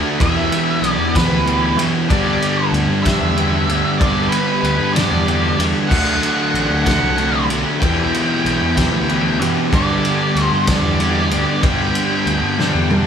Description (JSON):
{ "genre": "quiet-loud alternative rock", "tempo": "63 BPM (dotted quarters)", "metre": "6/8", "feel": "straight", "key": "G major", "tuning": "A4 = 441 Hz", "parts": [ { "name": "crunchy overdriven guitar", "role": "riff", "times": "0.0-13.1 s", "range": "D3 to G4", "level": "-22 LUFS", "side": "left 8 dB", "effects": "harmonic tremolo" }, { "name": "heavy high-gain guitar", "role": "riff", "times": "0.0-13.1 s", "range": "E2 to D4", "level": "-24 LUFS", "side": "equal", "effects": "distortion" }, { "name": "thick fuzz guitar", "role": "riff", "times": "0.0-13.1 s", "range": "E2 to D4", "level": "-21 LUFS", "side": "right 6 dB", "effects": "distortion" }, { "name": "octave-fuzz lead guitar", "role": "melody", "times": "0.2-13.1 s", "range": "B4 to G5", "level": "-22 LUFS", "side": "right 1 dB", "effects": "distortion" }, { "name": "fuzz picked electric bass", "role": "bass", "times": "0.2-13.1 s", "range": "A1 to G2", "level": "-22 LUFS", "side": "equal", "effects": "overdrive" }, { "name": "loose indie drum kit", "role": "drums", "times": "0.2-13.1 s", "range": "crash cymbal, kick drum, ride cymbal, snare drum, toms", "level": "-20 LUFS", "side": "left 1 dB", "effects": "none" } ], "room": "moderate stone room reverb, RT60 1.1 s", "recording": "band playing live in one room", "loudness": "-14 LUFS", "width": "side -7 dB against mid", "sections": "0.0-13.1 A section", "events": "drum fill 12.6-13.1", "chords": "0.2 Em; 2.1 G; 5.9 D; 7.8 Em; 9.7 G" }